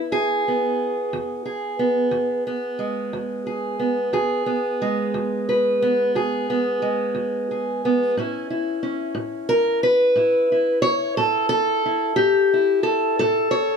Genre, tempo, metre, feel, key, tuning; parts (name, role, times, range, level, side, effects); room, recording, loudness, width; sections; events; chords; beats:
acoustic country blues, solo or duo; 60 BPM (dotted quarters); 12/8; straight; E major; A4 = 440 Hz
fingerpicked steel-string acoustic guitar; solo; 0.0-13.8 s; E2 to C#5; -19 LUFS; equal
moderate studio reverb, RT60 0.8 s; -19 LUFS; side -6 dB against mid
0.0-13.8 A section
0.0 E; 8.2 A
| 0.11 1.11 2.12 3.12 | 4.13 5.13 6.14 7.15 | 8.15 9.16 10.17 11.17 | 12.18 13.19